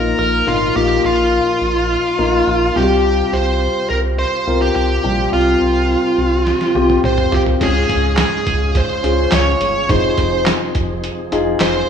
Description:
piano-driven pop; 105 BPM; 4/4; straight; A4 = 439 Hz
bluesy overdriven lead guitar; melody; 0.0-11.9 s; F4 to Db5; -17 LUFS; right 1 dB; distortion, tape echo
warm grand piano; accompaniment; 0.0-11.9 s; Ab2 to Bb4; -19 LUFS; left 4 dB
tonewheel organ; sustained chords; 0.0-11.9 s; C3 to Ab4; -27 LUFS; right 2 dB; fast rotary speaker
round analog bass; bass; 0.0-11.8 s; F1 to Db2; -20 LUFS; right 1 dB
lo-fi sampler-style drum kit; drums; 6.5-11.7 s; crash cymbal, handclaps, hi-hat, kick drum, snare drum, toms; -20 LUFS; right 1 dB
light reverb, digital ambience; rough home demo mix, studio reverb; -13 LUFS; side -7 dB against mid
0.0-7.6 A section; 7.6-11.9 B section
drum fill 6.5-7.6
0.0 Ebsus2; 2.8 Csus4; 7.6 Db; 9.9 Fm7

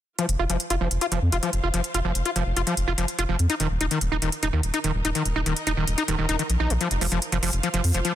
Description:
psychedelic trance; 145 BPM; 4/4; straight; A4 = 440 Hz
screaming distorted acid line; riff; 0.2-8.1 s; Eb3 to F4; -26 LUFS; left 1 dB; distortion, chorus, auto-pan, digital delay
electronic hi-hat; drums; 0.2-8.1 s; -29 LUFS; equal; studio reverb
dark symphonic string section; texture; 0.2-8.2 s; Eb4 to F5; -38 LUFS; right 1 dB
round analog bass; bass; 0.3-8.0 s; Eb1 to F2; -25 LUFS; equal
digital ambience; dense, heavily limited modern master; -22 LUFS; side -12 dB against mid
0.2-8.2 A section
fade-in on string section 0.2-8.2
0.2 F5; 3.5 Eb5; 6.8 F5

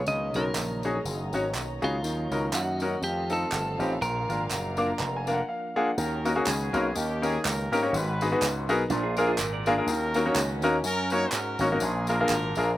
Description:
uptempo gospel; 123 BPM; 4/4; swing 56% on 8ths; Eb minor; A4 = 441 Hz
clean electric guitar; melody; 0.0-5.4 s; F4 to Eb5; -32 LUFS; equal; slapback echo
percussive tonewheel organ; sustained chords; 0.0-6.0 s; Eb3 to F4; -39 LUFS; right 2 dB; slow rotary speaker, chorus vibrato
warm studio string section; sustained chords; 0.0-6.0 s; Bb4 to Bb5; -40 LUFS; right 1 dB
slap bass with an envelope filter; bass; 0.0-12.8 s; F1 to Ab2; -31 LUFS; right 1 dB
bright baby grand piano; accompaniment; 0.1-12.7 s; Ab2 to D6; -27 LUFS; left 1 dB; slapback echo
tambourine and handclaps; percussion; 0.1-12.7 s; -34 LUFS; right 2 dB; slapback echo
mellow horn section; melody; 6.0-12.8 s; Bb3 to Db5; -31 LUFS; equal; slapback echo
clean electric guitar; second line; 8.9-9.9 s; D4 to D5; -31 LUFS; right 7 dB; slapback echo
little or no reverb; recorded outdoors, with no room sound; -24 LUFS; side -14 dB against mid
0.0-6.0 A section; 6.0-12.8 B section
grand piano fill 4.5-6.0
0.1 Gb6; 2.0 Ebm7; 3.0 F7; 4.0 Bb; 6.0 Ebm7; 7.0 Eb7; 7.9 Abm7; 8.9 Bb7; 9.9 Ebm7; 11.8 Bb7

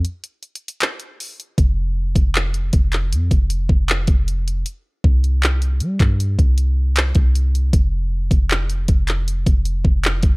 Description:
contemporary R&B; 78 BPM; 4/4; straight; A4 = 441 Hz
soft 808-style bass; bass; 0.0-10.4 s; F1 to G3; -19 LUFS; equal
smooth R&B drum kit; drums; 0.0-10.4 s; handclaps, hi-hat, kick drum; -17 LUFS; equal
little or no reverb; -16 LUFS; side -28 dB against mid
0.0-10.4 A section
break 0.0-1.6

